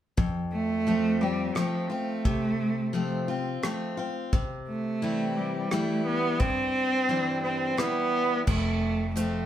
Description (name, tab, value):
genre	honky-tonk and classic country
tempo	87 BPM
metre	3/4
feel	straight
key	unclear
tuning	A4 = 440 Hz
part	picked steel-string acoustic guitar	accompaniment	0.2-9.5 s	F2 to F4	-30 LUFS	left 3 dB	none
part	damped 70s drum kit	drums	0.2-9.3 s	crash cymbal, hi-hat, kick drum, rim click	-28 LUFS	equal	none
part	rich cello	melody	0.5-9.5 s	F3 to C4	-27 LUFS	right 2 dB	none
part	vintage muted fingered electric bass	bass	8.5-9.5 s	F1	-30 LUFS	left 1 dB	none
room	wet studio reverb, RT60 0.9 s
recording	heard from further back in the room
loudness	-25 LUFS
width	side -11 dB against mid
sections	0.2-8.5 A section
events	none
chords	0.2 F; 4.3 C; 8.5 F